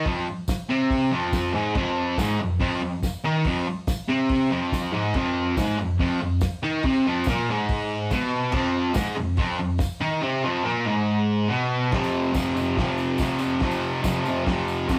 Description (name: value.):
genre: garage rock duo or trio.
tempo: 142 BPM.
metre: 4/4.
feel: straight.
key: unclear.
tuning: A4 = 444 Hz.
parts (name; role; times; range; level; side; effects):
fuzz guitar; riff; 0.0-15.0 s; F2 to Eb4; -25 LUFS; equal; distortion.
cloth-damped thuddy drum kit; drums; 0.1-15.0 s; crash cymbal, hi-hat, kick drum, snare drum; -31 LUFS; equal; none.
tambourine; percussion; 0.5-15.0 s; none; -45 LUFS; equal; none.
room: wet small room reverb, RT60 0.5 s.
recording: rough rehearsal-room recording.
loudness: -24 LUFS.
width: mono.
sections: 0.0-11.9 A section; 11.9-15.0 B section.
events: none.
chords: 0.0 F5.